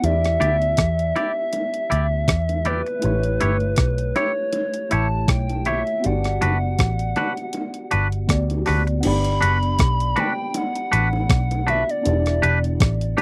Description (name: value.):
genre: lovers rock reggae.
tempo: 80 BPM.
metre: 4/4.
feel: swing 55% on 16ths.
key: G major.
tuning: A4 = 440 Hz.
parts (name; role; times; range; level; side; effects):
reedy FM lead; melody; 0.0-12.6 s; B4 to B5; -27 LUFS; equal; chorus, tape echo.
barky tine electric piano; accompaniment; 0.0-13.2 s; A3 to D5; -32 LUFS; equal; overdrive, phaser.
vintage muted picked electric bass; bass; 0.0-13.1 s; E1 to E2; -24 LUFS; equal; none.
crisp 8-bit digital drum machine; drums; 0.0-13.2 s; crash cymbal, hi-hat, kick drum, rim click; -25 LUFS; equal; none.
bongos; percussion; 0.0-13.2 s; none; -33 LUFS; equal; none.
twangy electric guitar; stabs; 0.4-13.2 s; D4 to D5; -24 LUFS; equal; none.
room: little or no reverb.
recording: dry, close 1970s-style studio recording.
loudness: -21 LUFS.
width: mono.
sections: 0.0-9.0 A section; 9.0-13.2 B section.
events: none.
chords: 0.0 Em7; 3.0 A7; 6.0 Gmaj7; 12.1 Em7.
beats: | 0.03 0.78 1.53 2.28 | 3.03 3.78 4.54 5.29 | 6.04 6.79 7.54 8.29 | 9.05 9.80 10.55 11.30 | 12.05 12.80.